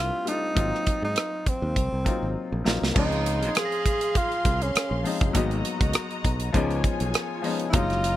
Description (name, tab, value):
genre	lush 1970s-style soul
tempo	100 BPM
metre	4/4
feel	swing 54% on 16ths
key	Db major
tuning	A4 = 439 Hz
part	warm tenor saxophone	melody	0.0-8.2 s	C4 to Ab4	-27 LUFS	right 1 dB	none
part	bright baby grand piano	accompaniment	0.0-8.2 s	F3 to F4	-30 LUFS	left 5 dB	none
part	modern bright fingered electric bass	bass	0.0-8.2 s	Gb1 to Ab2	-28 LUFS	equal	none
part	modern studio drum kit	drums	0.3-8.2 s	crash cymbal, hi-hat, kick drum, rim click, snare drum	-25 LUFS	right 1 dB	none
part	rich symphonic string section	second line	3.0-8.2 s	Eb4 to C6	-33 LUFS	left 1 dB	none
part	glockenspiel with soft plastic mallets	texture	3.3-5.2 s	Eb6 to Bb6	-39 LUFS	right 6 dB	stereo widening
room	light reverb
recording	none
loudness	-23 LUFS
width	side -14 dB against mid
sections	0.0-3.0 A section; 3.0-8.2 B section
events	drum fill 2.4-3.0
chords	0.0 F6; 0.6 Ab13; 3.0 Dbmaj9; 5.4 Abm9; 6.5 Db7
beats	| 0.57 1.17 1.76 2.36 | 2.96 3.56 4.16 4.75 | 5.35 5.95 6.55 7.14 | 7.74